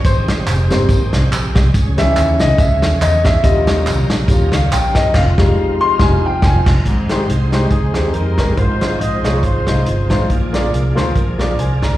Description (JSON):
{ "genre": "uptempo gospel", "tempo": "140 BPM", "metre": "4/4", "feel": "swing 56% on 8ths", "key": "Ab major", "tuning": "A4 = 441 Hz", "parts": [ { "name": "warm baby grand piano", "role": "accompaniment", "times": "0.0-12.0 s", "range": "Ab2 to C6", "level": "-18 LUFS", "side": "left 2 dB", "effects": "slapback echo" }, { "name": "bright tonewheel organ", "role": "sustained chords", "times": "0.0-12.0 s", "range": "Db3 to C5", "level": "-25 LUFS", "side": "right 3 dB", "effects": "slow rotary speaker, overdrive, chorus vibrato" }, { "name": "fingered electric bass", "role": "bass", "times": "0.0-12.0 s", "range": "F1 to F2", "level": "-16 LUFS", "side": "equal", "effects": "none" }, { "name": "warm soul drum kit", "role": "drums", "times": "0.0-11.9 s", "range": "crash cymbal, hi-hat, kick drum, snare drum", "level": "-17 LUFS", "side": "equal", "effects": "none" }, { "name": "tambourine and handclaps", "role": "percussion", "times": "0.1-5.0 s", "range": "none", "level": "-27 LUFS", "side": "right 3 dB", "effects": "slapback echo" }, { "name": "breathy trumpet", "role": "melody", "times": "7.7-10.1 s", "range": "Ab4 to Eb5", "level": "-25 LUFS", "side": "right 3 dB", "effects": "slapback echo" }, { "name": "dark horn section", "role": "melody", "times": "7.7-10.3 s", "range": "C4 to Eb5", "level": "-24 LUFS", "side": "left 2 dB", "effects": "slapback echo" } ], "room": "light reverb", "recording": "live gig heard through the venue's PA, recital hall reverb", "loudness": "-12 LUFS", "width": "side -15 dB against mid", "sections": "0.0-6.9 A section; 6.9-12.0 B section", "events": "grand piano solo 0.0-6.9; band accent 5.1-6.9", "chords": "0.0 Abmaj7; 1.7 Dbmadd9; 3.4 Eb7; 5.1 Fm7; 6.9 Abmaj7; 8.6 Fm7/Ab; 10.3 Bb7" }